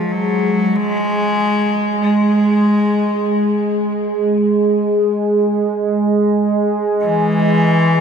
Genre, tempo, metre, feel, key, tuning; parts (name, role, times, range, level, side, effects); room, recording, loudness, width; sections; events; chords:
dark ambient drone; free time; A4 = 440 Hz
rich cello; melody; 0.0-8.0 s; E3 to Ab3; -17 LUFS; left 2 dB; shimmer reverb, ping-pong delay
analog drone; drone; 0.0-8.0 s; Ab3; -16 LUFS; right 2 dB; chorus
wet huge ambient reverb, RT60 8.1 s; -14 LUFS; side -7 dB against mid
0.0-8.0 A section